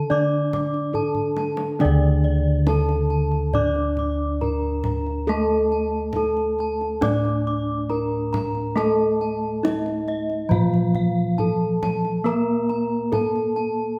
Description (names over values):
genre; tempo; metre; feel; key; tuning
Javanese gamelan; 69 BPM; 4/4; straight; D pelog; A4 = 440 Hz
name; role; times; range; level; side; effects
gamelan-type bronze metallophone; melody; 0.0-14.0 s; D4 to D5; -28 LUFS; equal; none
gamelan-type bronze metallophone; accompaniment; 0.0-14.0 s; D3 to D4; -27 LUFS; equal; none
gamelan-type bronze metallophone; arpeggios; 0.0-14.0 s; D5 to D6; -32 LUFS; equal; none
gamelan-type bossed gongs; bass; 0.0-14.0 s; D2 to Bb4; -28 LUFS; equal; none
kendang; percussion; 0.1-13.7 s; none; -32 LUFS; equal; none
room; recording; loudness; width
moderate recital hall reverb, RT60 1.4 s; none; -22 LUFS; mono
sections
0.0-1.8 A section; 1.8-14.0 B section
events
drum fill 0.9-1.8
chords
none